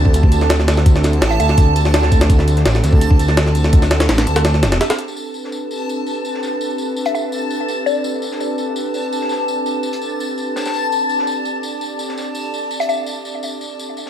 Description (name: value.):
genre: drum and bass, jungle.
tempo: 167 BPM.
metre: 4/4.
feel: straight.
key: A minor.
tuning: A4 = 443 Hz.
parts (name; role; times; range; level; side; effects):
airy breathy pad; sustained chords; 0.0-14.1 s; C4 to D5; -24 LUFS; right 1 dB; chorus.
dark detuned saw bass; bass; 0.0-4.8 s; E1 to D2; -15 LUFS; equal; none.
backwards swelling texture; texture; 0.0-14.1 s; A5; -24 LUFS; equal; built-in reverb.
crunchy breakbeat drum kit; drums; 0.1-14.1 s; hi-hat, snare drum, tambourine; -31 LUFS; left 2 dB; high-pass filter on hats, small room ambience, high-pass filter on snare, high-pass filter on perc, high-pass filter on room.
jungle sampler-style drum kit; drums; 0.1-5.1 s; hi-hat, kick drum, snare drum; -14 LUFS; equal; small room ambience.
mallet-like synth pluck; melody; 1.3-1.5, 7.1-8.2, 12.8-13.0 s; D5 to E5; -24 LUFS; left 3 dB; chorus, phaser, dub echo.
room: light reverb, studio ambience.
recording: none.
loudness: -15 LUFS.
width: side -9 dB against mid.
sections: 0.0-5.2 A section; 5.2-14.1 B section.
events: drop 0.0-5.2; break 4.5-5.2; filter sweep on analog synth pad 5.2-14.1.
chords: 0.0 Am11.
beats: 0.14 0.50 | 0.86 1.22 1.58 1.94 | 2.29 2.65 3.01 3.37 | 3.73 4.09 4.45 4.81 | 5.17 5.53 5.89 6.25 | 6.61 6.97 7.33 7.68 | 8.04 8.40 8.76 9.12 | 9.48 9.84 10.20 10.56 | 10.92 11.28 11.64 12.00 | 12.36 12.71 13.07 13.43 | 13.79.